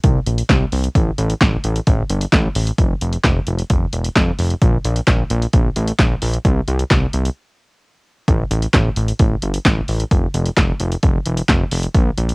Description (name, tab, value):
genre	synth-pop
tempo	131 BPM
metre	4/4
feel	straight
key	unclear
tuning	A4 = 440 Hz
part	fat analog bass	bass	0.0-12.3 s	E1 to C2	-18 LUFS	equal	none
part	punchy analog drum machine	drums	0.0-12.3 s	handclaps, hi-hat, kick drum, snare drum	-16 LUFS	equal	overdrive, cassette tape
room	little or no reverb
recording	home recording on cassette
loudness	-15 LUFS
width	side -34 dB against mid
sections	0.0-8.3 A section; 8.3-12.3 A section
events	break 7.4-8.3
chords	none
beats	0.04 0.49 | 0.95 1.41 1.87 2.33 | 2.79 3.24 3.70 4.16 | 4.62 5.08 5.53 5.99 | 6.45 6.91 7.37 7.82 | 8.28 8.74 9.20 9.65 | 10.11 10.57 11.03 11.49 | 11.95